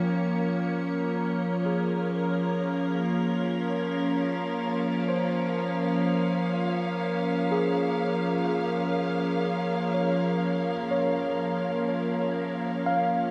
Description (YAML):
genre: ambient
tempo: 62 BPM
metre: 4/4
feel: straight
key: Bb dorian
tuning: A4 = 442 Hz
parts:
  - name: evolving wavetable pad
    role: sustained chords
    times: 0.0-13.3 s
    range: F3 to Bb4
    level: -28 LUFS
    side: equal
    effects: chorus, built-in reverb
  - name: bright tine electric piano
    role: arpeggios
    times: 0.0-13.3 s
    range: Ab4 to G5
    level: -35 LUFS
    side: equal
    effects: delay
  - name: dark studio violin section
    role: texture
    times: 0.0-13.3 s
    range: Db5 to Db7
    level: -38 LUFS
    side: equal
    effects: none
room: wet cathedral reverb, RT60 7.1 s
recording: dreamy mix soaked in reverb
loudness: -27 LUFS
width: mono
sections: 0.0-13.3 A section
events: fade-in on tine electric piano 0.0-13.3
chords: 0.0 Bbm